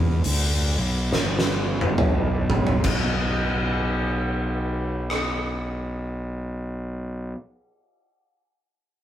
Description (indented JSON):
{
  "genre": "stoner and doom metal",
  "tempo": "69 BPM",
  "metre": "4/4",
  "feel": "swing 60% on 8ths",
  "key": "unclear",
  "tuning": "A4 = 439 Hz",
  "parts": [
    { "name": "fuzz fingered electric bass", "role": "bass", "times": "0.0-7.3 s", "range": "G1 to E2", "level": "-25 LUFS", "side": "equal", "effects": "overdrive" },
    { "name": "oversized low-tuned drum kit", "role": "drums", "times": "0.2-5.3 s", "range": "crash cymbal, hi-hat, kick drum, rim click, snare drum, toms", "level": "-24 LUFS", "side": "equal", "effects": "none" }
  ],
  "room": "little or no reverb",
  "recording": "rough rehearsal-room recording",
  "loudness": "-22 LUFS",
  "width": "side -11 dB against mid",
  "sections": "0.0-2.9 A section; 2.9-6.3 B section",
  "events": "drum fill 1.1-2.9",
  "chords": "none"
}